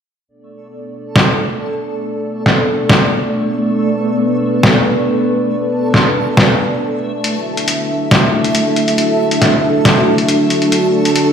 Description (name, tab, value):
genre	deep dubstep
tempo	138 BPM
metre	4/4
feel	half-time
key	B minor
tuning	A4 = 440 Hz
part	dark analog pad	sustained chords	0.3-11.3 s	B3 to E5	-16 LUFS	equal	chorus
part	backwards swelling texture	texture	1.1-11.3 s	A3 to A4	-19 LUFS	right 1 dB	built-in reverb
part	trip hop sampler-style drum kit	drums	1.2-11.2 s	hi-hat, snare drum	-13 LUFS	equal	none
room	moderate spring reverb, RT60 2.0 s, digital ambience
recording	played on a big sound system in a bare room, stone room reverb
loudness	-12 LUFS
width	side -7 dB against mid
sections	0.3-11.3 A section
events	none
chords	0.3 Bm7; 7.2 Dadd9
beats	| 0.29 0.72 1.16 1.59 | 2.02 2.46 2.90 3.33 | 3.76 4.20 4.63 5.07 | 5.50 5.94 6.37 6.81 | 7.24 7.68 8.11 8.55 | 8.98 9.42 9.85 10.29 | 10.72 11.16